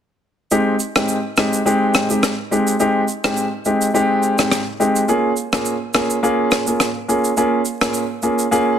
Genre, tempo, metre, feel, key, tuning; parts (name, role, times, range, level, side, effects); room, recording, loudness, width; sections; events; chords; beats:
afrobeats; 105 BPM; 4/4; swing 55% on 16ths; Ab major; A4 = 444 Hz
warm concert grand piano; accompaniment; 0.5-8.8 s; Ab3 to Ab4; -17 LUFS; equal
shaker and rim click; drums; 0.5-8.7 s; -20 LUFS; equal; soft clipping on snare
moderate plate reverb, RT60 1.5 s, studio reverb; dense, heavily limited modern master; -16 LUFS; side -8 dB against mid
0.5-8.8 A section
0.5 Abmaj7; 5.1 Bbm7
| 0.52 1.09 1.66 2.23 | 2.80 3.37 3.94 4.52 | 5.09 5.66 6.23 6.80 | 7.37 7.95 8.52